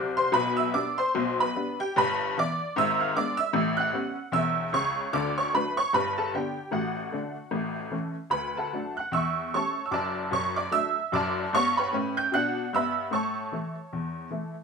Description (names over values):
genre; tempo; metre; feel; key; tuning
jazz, stride piano; 150 BPM; 4/4; swing 59% on 8ths; D major; A4 = 439 Hz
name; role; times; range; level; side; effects
honky-tonk upright piano; solo; 0.0-14.5 s; E1 to G6; -25 LUFS; equal; none
room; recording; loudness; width
moderate studio reverb, RT60 0.7 s; minimal, uncompressed stereo recording; -25 LUFS; side -5 dB against mid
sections
0.0-8.3 A section; 8.3-14.6 B section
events
none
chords
0.3 G/B; 1.9 Em/G; 2.7 G#dim7; 3.5 A13; 5.1 D; 5.9 G; 6.7 D/A; 7.5 A; 8.3 D; 9.1 A7/E; 9.9 D/F#; 11.5 Em/G; 13.1 A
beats
| 0.33 0.73 1.13 1.53 | 1.93 2.33 2.73 3.13 | 3.53 3.93 4.33 4.73 | 5.13 5.53 5.93 6.33 | 6.73 7.13 7.53 7.93 | 8.33 8.73 9.13 9.53 | 9.93 10.33 10.73 11.13 | 11.53 11.93 12.32 12.72 | 13.12 13.52 13.92 14.32